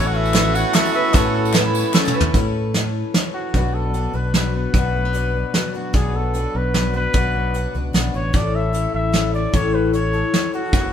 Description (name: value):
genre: indie folk with a building arrangement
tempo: 150 BPM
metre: 3/4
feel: straight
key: A major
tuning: A4 = 440 Hz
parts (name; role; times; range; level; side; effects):
- mellow trumpet; melody; 0.0-10.9 s; F#4 to F#5; -24 LUFS; equal; none
- rich fiddle; second line; 0.0-2.3 s; C#4 to F#4; -25 LUFS; right 3 dB; none
- picked twelve-string acoustic guitar; accompaniment; 0.0-10.9 s; F#2 to B4; -25 LUFS; left 6 dB; none
- accordion; sustained chords; 0.0-2.3 s; A3 to C#4; -28 LUFS; right 1 dB; none
- bowl-back mandolin; arpeggios; 0.0-2.3 s; C#4 to B4; -25 LUFS; right 4 dB; none
- fingered electric bass; bass; 0.0-10.9 s; F#1 to A2; -22 LUFS; equal; none
- soft brush drum kit; drums; 0.3-10.8 s; hi-hat, kick drum, snare drum, toms; -19 LUFS; right 1 dB; none
- group handclap; percussion; 0.3-2.0 s; none; -30 LUFS; left 4 dB; none
- tambourine; percussion; 0.3-2.1 s; none; -35 LUFS; right 4 dB; none
- fingerpicked steel-string acoustic guitar; accompaniment; 3.5-8.3 s; B2 to D4; -30 LUFS; left 3 dB; none
room: light reverb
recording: band playing live in one room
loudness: -17 LUFS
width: side -9 dB against mid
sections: 0.0-2.3 A section; 2.3-3.5 B section; 3.5-10.9 C section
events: drum fill 1.9-2.3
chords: 0.0 Aadd9; 3.5 Bm; 8.3 A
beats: 0.34 0.74 | 1.14 1.54 1.94 | 2.34 2.74 3.14 | 3.54 3.94 4.34 | 4.74 5.14 5.54 | 5.94 6.34 6.74 | 7.14 7.54 7.94 | 8.34 8.74 9.14 | 9.54 9.94 10.33 | 10.73